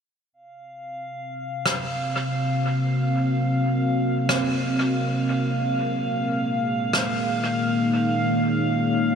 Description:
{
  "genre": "ambient dub",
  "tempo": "free time",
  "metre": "none",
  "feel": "none",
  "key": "Ab mixolydian",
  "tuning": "A4 = 440 Hz",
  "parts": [
    { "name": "deep dark ambient pad", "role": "sustained chords", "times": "1.3-9.2 s", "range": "Bb3 to F5", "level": "-23 LUFS", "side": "equal", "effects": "chorus, built-in reverb" },
    { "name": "drifting glass-harmonics texture", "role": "texture", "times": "0.5-9.2 s", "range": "F5", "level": "-29 LUFS", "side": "right 1 dB", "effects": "chorus, built-in reverb" },
    { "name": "rim click", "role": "drums", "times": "1.7-7.1 s", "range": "none", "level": "-29 LUFS", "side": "equal", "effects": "dub echo" }
  ],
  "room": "wet huge ambient reverb, RT60 7.9 s",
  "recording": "dreamy mix soaked in reverb",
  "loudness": "-21 LUFS",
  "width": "side -7 dB against mid",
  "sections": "0.3-9.2 A section",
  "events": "filter sweep on ambient pad 0.3-9.2",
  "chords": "0.3 Ab7; 5.6 Db"
}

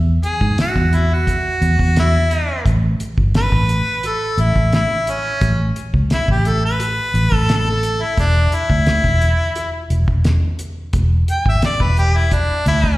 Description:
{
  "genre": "straight-eighth soul blues",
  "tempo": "87 BPM",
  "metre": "4/4",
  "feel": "straight",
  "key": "unclear",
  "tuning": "A4 = 440 Hz",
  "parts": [
    { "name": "vintage muted fingered electric bass", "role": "bass", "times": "0.0-13.0 s", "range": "E1 to G#2", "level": "-16 LUFS", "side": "equal", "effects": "none" },
    { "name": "warm harmonica", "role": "melody", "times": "0.2-13.0 s", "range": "C#4 to G5", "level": "-19 LUFS", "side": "equal", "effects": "overdrive, slapback echo" },
    { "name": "cloth-damped thuddy drum kit", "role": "drums", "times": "0.2-13.0 s", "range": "hi-hat, kick drum, snare drum", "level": "-21 LUFS", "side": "equal", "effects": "none" }
  ],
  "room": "small room ambience",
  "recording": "live gig heard through the venue's PA, recital hall reverb",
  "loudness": "-14 LUFS",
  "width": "side -18 dB against mid",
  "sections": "0.0-13.0 A section",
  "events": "harmonica solo 0.0-13.0",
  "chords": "0.0 Esus2; 2.6 Asus2; 8.2 E7(no3)"
}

